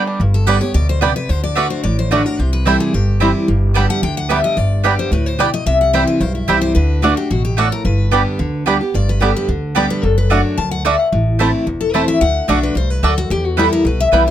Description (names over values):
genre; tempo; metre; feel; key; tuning
bluegrass; 220 BPM; 4/4; straight; G major; A4 = 440 Hz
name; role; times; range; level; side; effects
bluegrass banjo; melody; 0.0-14.2 s; G3 to G4; -23 LUFS; right 2 dB; none
picked steel-string acoustic guitar; accompaniment; 0.0-14.3 s; E2 to G4; -20 LUFS; equal; none
mandolin; stabs; 0.0-14.2 s; A3 to A5; -17 LUFS; right 6 dB; none
upright bass; bass; 0.2-14.3 s; E1 to E2; -17 LUFS; equal; none
picked steel-string acoustic guitar; melody; 0.3-14.3 s; E4 to A5; -20 LUFS; left 4 dB; none
room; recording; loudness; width
little or no reverb; close, detailed microphones; -13 LUFS; side -11 dB against mid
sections
0.2-8.9 A section; 8.9-14.3 B section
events
break 0.0; steel-string acoustic guitar solo 8.9-14.3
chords
0.2 G; 1.3 D; 2.4 C; 3.5 G; 5.7 C; 6.8 D; 7.9 G; 10.0 D/F#; 11.1 Am; 12.2 D; 13.3 Em